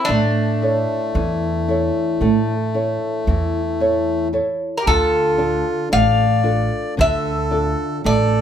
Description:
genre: greek folk, Greek bouzouki band.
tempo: 113 BPM (eighths).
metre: 9/8.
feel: straight.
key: D minor from 4.9 s.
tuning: A4 = 441 Hz.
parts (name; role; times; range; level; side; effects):
Greek bouzouki; melody; 0.0-8.4 s; D4 to F5; -20 LUFS; left 2 dB; none.
accordion; second line; 0.0-8.4 s; A3 to D5; -24 LUFS; right 1 dB; none.
nylon-string guitar; accompaniment; 0.1-8.4 s; D3 to C#5; -21 LUFS; right 1 dB; none.
upright bass; bass; 0.1-8.4 s; A1 to A2; -22 LUFS; equal; none.
room: wet small room reverb, RT60 0.5 s.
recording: band playing live in one room.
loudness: -16 LUFS.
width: side -9 dB against mid.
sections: 0.0-4.9 A section; 4.9-8.4 B section.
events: none.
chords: 0.1 A; 4.9 Dm.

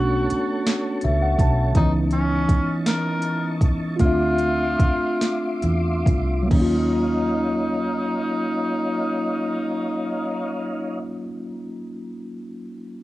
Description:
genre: slow six-eight R&B.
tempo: 44-55 BPM (dotted quarters).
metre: 6/8.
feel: straight.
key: unclear.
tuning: A4 = 444 Hz.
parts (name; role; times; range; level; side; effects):
warm tenor saxophone; melody; 0.0-11.0 s; Db4 to Bb4; -27 LUFS; equal; cassette tape.
mellow tine electric piano; accompaniment; 0.0-13.0 s; Eb3 to A5; -24 LUFS; equal; medium stereo tremolo.
tonewheel organ; sustained chords; 0.0-11.0 s; Fb3 to D6; -31 LUFS; left 1 dB; chorus vibrato, slow rotary speaker.
fingered electric bass; bass; 0.0-11.0 s; B1 to E2; -23 LUFS; equal; none.
smooth R&B drum kit; drums; 0.3-6.7 s; crash cymbal, hi-hat, kick drum, snare drum; -20 LUFS; equal; overdrive, vintage 12-bit sampler grit, cassette tape.
room: light reverb, digital ambience.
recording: home recording on cassette, small room ambience.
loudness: -19 LUFS.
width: side -16 dB against mid.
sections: 0.0-6.5 A section; 6.5-12.0 B section.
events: tine electric piano fill 0.7-1.8; slowing down 1.8-6.5.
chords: 0.0 Bm9; 1.8 Dbm9; 4.0 Dm9; 6.5 Ebm9.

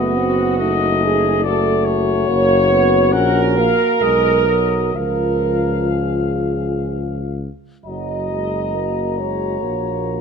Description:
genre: classical, hymn-like piece for brass band.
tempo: 60-72 BPM.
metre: 3/4.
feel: rubato.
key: F# major.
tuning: A4 = 440 Hz.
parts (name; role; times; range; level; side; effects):
dark cornet; melody; 0.0-10.2 s; C#5 to A#5; -23 LUFS; left 9 dB; none.
dark French horn section; second line; 0.0-10.2 s; F#4 to D#5; -20 LUFS; right 6 dB; none.
warm euphonium; accompaniment; 0.0-10.2 s; A3 to F#4; -24 LUFS; left 7 dB; none.
warm euphonium; accompaniment; 0.0-10.2 s; E#3 to C#4; -24 LUFS; right 3 dB; none.
mellow tuba; bass; 0.0-10.2 s; F#1 to C#2; -22 LUFS; left 1 dB; none.
room: light reverb.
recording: close, detailed microphones.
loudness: -15 LUFS.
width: side -6 dB against mid.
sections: 0.0-10.2 A section.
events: none.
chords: 0.0 F#dim7; 2.3 F#; 4.0 G#m/B; 4.9 C#; 7.9 F#.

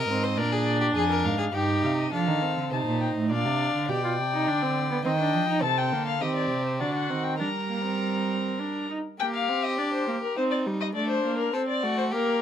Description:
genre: classical, baroque-style fugue for string quartet.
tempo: 102 BPM.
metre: 3/4.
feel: straight.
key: G minor from 5.6 s.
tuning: A4 = 440 Hz.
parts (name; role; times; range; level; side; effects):
dark violin; melody; 0.0-12.4 s; Bb4 to Bb5; -29 LUFS; left 6 dB; none.
rich violin; second line; 0.0-12.4 s; D4 to Eb5; -31 LUFS; left 2 dB; none.
rich cello; bass; 0.0-8.9 s; F2 to G3; -29 LUFS; right 4 dB; none.
warm viola; accompaniment; 0.1-12.4 s; G3 to G4; -29 LUFS; right 2 dB; none.
room: light reverb.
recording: close, detailed microphones.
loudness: -24 LUFS.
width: side -9 dB against mid.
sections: 0.0-2.1 A section; 2.1-9.2 B section; 9.2-12.4 C section.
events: none.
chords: 0.4 Bb7; 1.5 Eb/G; 2.1 F7; 3.3 Bb; 3.9 G/B; 5.0 Cm/Eb (rootless); 5.6 Am7b5/C; 6.8 D7; 7.4 Gm; 9.2 Gm/Bb; 10.4 Cm; 11.0 D7/A.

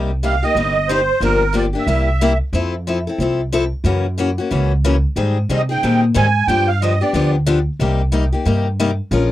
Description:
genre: acoustic string swing (jazz manouche).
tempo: 182 BPM.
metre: 4/4.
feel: swing 60% on 8ths.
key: C minor.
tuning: A4 = 440 Hz.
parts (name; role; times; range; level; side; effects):
picked steel-string acoustic guitar; accompaniment; 0.0-9.3 s; C3 to Bb4; -19 LUFS; left 4 dB; none.
upright bass; bass; 0.0-9.3 s; G1 to C3; -18 LUFS; equal; none.
musette accordion; melody; 0.2-2.4, 5.5-7.3 s; Bb4 to Ab5; -18 LUFS; right 3 dB; none.
room: little or no reverb.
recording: dry, close 1970s-style studio recording.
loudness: -15 LUFS.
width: side -14 dB against mid.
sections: 0.0-9.3 A section.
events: none.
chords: 0.0 Cm7; 1.2 Gm7; 1.9 C7; 2.5 Fmaj7; 3.8 F#7; 5.2 Abmaj7; 6.5 G7; 7.8 Cm7.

